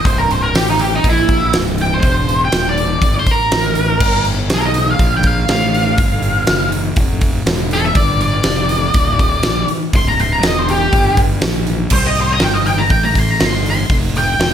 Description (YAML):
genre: blues rock power trio and southern rock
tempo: 121 BPM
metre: 4/4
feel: straight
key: C mixolydian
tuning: A4 = 440 Hz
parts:
  - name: octave-fuzz lead guitar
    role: melody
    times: 0.0-14.5 s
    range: D#4 to C6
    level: -16 LUFS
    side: equal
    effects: wah, distortion
  - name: fuzz fingered electric bass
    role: bass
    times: 0.0-14.5 s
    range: C1 to C2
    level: -18 LUFS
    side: equal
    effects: overdrive
  - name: huge arena drum kit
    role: drums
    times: 0.1-14.5 s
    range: crash cymbal, hi-hat, kick drum, snare drum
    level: -16 LUFS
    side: equal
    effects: none
room: light reverb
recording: none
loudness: -12 LUFS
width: side -9 dB against mid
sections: 0.0-11.9 A section; 11.9-14.5 A section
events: lead electric guitar solo 0.0-14.5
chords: 0.0 C7#9; 4.0 G7#9; 9.9 C; 10.9 Gm; 11.9 C5; 13.9 F5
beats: | 0.05 0.54 1.04 1.54 | 2.03 2.53 3.02 3.52 | 4.01 4.50 5.00 5.49 | 5.98 6.48 6.97 7.46 | 7.96 8.45 8.94 9.44 | 9.93 10.43 10.92 11.42 | 11.91 12.41 12.91 13.40 | 13.90 14.40